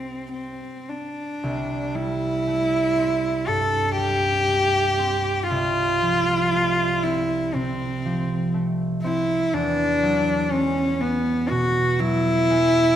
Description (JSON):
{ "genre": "classical, impressionist duo for cello and harp", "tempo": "60 BPM", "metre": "4/4", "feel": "rubato", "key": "C major", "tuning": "A4 = 438 Hz", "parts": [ { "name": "warm cello", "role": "melody", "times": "0.0-13.0 s", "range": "B3 to A4", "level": "-21 LUFS", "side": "equal", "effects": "none" }, { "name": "concert harp", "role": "accompaniment", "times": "0.0-13.0 s", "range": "C2 to E4", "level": "-26 LUFS", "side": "right 2 dB", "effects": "none" } ], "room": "moderate scoring stage reverb, RT60 1.5 s", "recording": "minimal, uncompressed stereo recording", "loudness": "-20 LUFS", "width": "side -10 dB against mid", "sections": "0.0-1.4 A section; 1.4-13.0 B section", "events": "none", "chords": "0.0 Cmaj9; 1.4 C6; 5.5 F/C; 9.5 E9" }